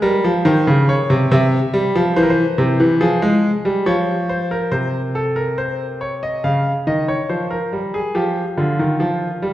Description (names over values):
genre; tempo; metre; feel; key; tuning
classical, baroque-style two-part invention for grand piano; 70 BPM; 4/4; straight; unclear; A4 = 440 Hz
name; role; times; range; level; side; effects
clear concert grand piano; solo; 0.0-9.5 s; C3 to F5; -15 LUFS; equal; none
room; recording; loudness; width
wet recital hall reverb, RT60 1.7 s; heard from further back in the room; -15 LUFS; side -14 dB against mid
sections
0.0-4.7 A section; 4.7-9.5 B section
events
none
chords
0.0 Ab (rootless); 1.3 C; 3.0 Fm; 4.7 Cm7; 6.5 Bbm/Db; 8.2 G5